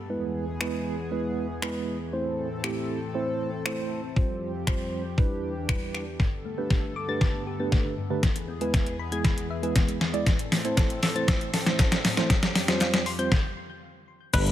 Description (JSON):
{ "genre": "dance-pop", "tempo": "118 BPM", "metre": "4/4", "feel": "straight", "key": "A minor", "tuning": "A4 = 440 Hz", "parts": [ { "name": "chorused pulse-width pad", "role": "sustained chords", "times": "0.0-14.5 s", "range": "E2 to A4", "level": "-35 LUFS", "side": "left 2 dB", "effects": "sidechain pumping" }, { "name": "mellow tine electric piano", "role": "accompaniment", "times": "0.1-14.5 s", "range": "G3 to D5", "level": "-31 LUFS", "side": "right 3 dB", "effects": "medium stereo tremolo, sidechain pumping" }, { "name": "detuned 8-bit digital drum machine", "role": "drums", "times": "0.6-14.5 s", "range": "crash cymbal, finger snaps, hi-hat, kick drum, shaker, snare drum", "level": "-24 LUFS", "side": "left 1 dB", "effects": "overdrive" }, { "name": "thumb-piano-like synth pluck", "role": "arpeggios", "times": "6.2-13.3 s", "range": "G2 to A6", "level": "-36 LUFS", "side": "left 5 dB", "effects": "chorus, sidechain pumping, digital delay" }, { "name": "group handclap", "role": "percussion", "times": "10.8-12.9 s", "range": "none", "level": "-40 LUFS", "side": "left 4 dB", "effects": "none" }, { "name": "wide unison pluck", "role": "melody", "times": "14.3-14.5 s", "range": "B4", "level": "-27 LUFS", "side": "left 4 dB", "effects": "auto-pan" }, { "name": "glassy slap bass", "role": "bass", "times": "14.3-14.5 s", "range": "G1", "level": "-23 LUFS", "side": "equal", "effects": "sidechain pumping" } ], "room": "light reverb, digital ambience", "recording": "none", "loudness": "-24 LUFS", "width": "side -12 dB against mid", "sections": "0.0-6.2 A section; 6.2-14.3 B section", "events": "build-up 6.2-14.3; drum fill 6.2-13.3; stop 13.3-14.3", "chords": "0.1 E; 2.1 Am; 4.2 Fsus2; 5.2 Em7; 6.2 Gadd9; 8.2 E; 10.3 Am; 12.3 Fsus2", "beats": "| 0.10 0.61 1.11 1.62 | 2.13 2.64 3.15 3.66 | 4.17 4.67 5.18 5.69 | 6.20 6.71 7.22 7.72 | 8.23 8.74 9.25 9.76 | 10.27 10.78 11.28 11.79 | 12.30 12.81 13.32 13.83 | 14.34" }